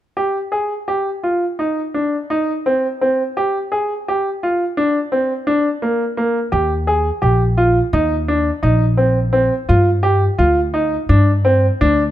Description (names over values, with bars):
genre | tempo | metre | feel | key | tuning
contemporary instrumental, chamber music in an uneven meter | 171 BPM (eighths) | 9/8 | straight | C minor | A4 = 440 Hz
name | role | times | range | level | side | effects
bright concert grand piano | arpeggios | 0.2-12.0 s | Bb3 to Ab4 | -16 LUFS | equal | none
upright bass | bass | 6.5-12.1 s | Bb1 to G2 | -16 LUFS | equal | none
room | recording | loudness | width
light reverb | close, detailed microphones | -15 LUFS | side -13 dB against mid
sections
0.2-12.1 A section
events
none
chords
0.2 Cm; 3.4 Bb13; 6.5 Eb6; 9.7 G7(no3)